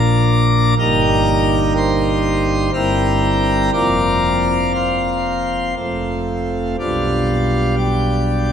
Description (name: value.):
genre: classical, chorale-style piece for pipe organ.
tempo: 61 BPM.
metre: 3/4.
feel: rubato.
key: unclear.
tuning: A4 = 440 Hz.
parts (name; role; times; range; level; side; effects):
pipe organ, plenum; solo; 0.0-8.5 s; F1 to D6; -14 LUFS; equal; none.
room: wet cathedral reverb, RT60 4.8 s.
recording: none.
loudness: -15 LUFS.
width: side -8 dB against mid.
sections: 0.0-8.5 A section.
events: none.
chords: 0.0 Bb; 0.8 Eb/G; 2.7 C7/G; 3.7 Fsus4; 5.8 F; 6.8 G7/B.